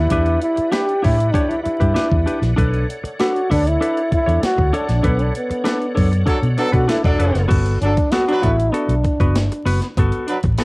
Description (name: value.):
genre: funk.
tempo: 97 BPM.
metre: 4/4.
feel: straight.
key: unclear.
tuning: A4 = 442 Hz.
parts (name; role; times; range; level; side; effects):
mellow trombone; melody; 0.0-9.7 s; B3 to G4; -20 LUFS; equal; cassette tape, plate reverb, analog delay.
bright tonewheel organ; sustained chords; 0.0-7.5 s; G4 to F#5; -32 LUFS; equal; overdrive, chorus vibrato, slow rotary speaker, cassette tape, plate reverb.
vintage muted fingered electric bass; bass; 0.0-10.6 s; E1 to B2; -18 LUFS; equal; none.
semi-hollow electric guitar; accompaniment; 0.1-10.6 s; B3 to C#5; -24 LUFS; left 1 dB; cassette tape, plate reverb.
breakbeat sampler-style drum kit; drums; 0.1-10.6 s; crash cymbal, hi-hat, kick drum, snare drum; -21 LUFS; equal; cassette tape.
warm horn section; second line; 6.3-10.4 s; F#3 to B4; -23 LUFS; right 1 dB; cassette tape, plate reverb.
room: light reverb.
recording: home recording on cassette, vinyl crackle.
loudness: -15 LUFS.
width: side -25 dB against mid.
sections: 0.0-7.5 A section; 7.5-10.6 B section.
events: trombone solo 0.0-7.5; band accent 5.0-7.5.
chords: 0.0 Em7; 2.6 Bm7; 7.5 Gmaj9.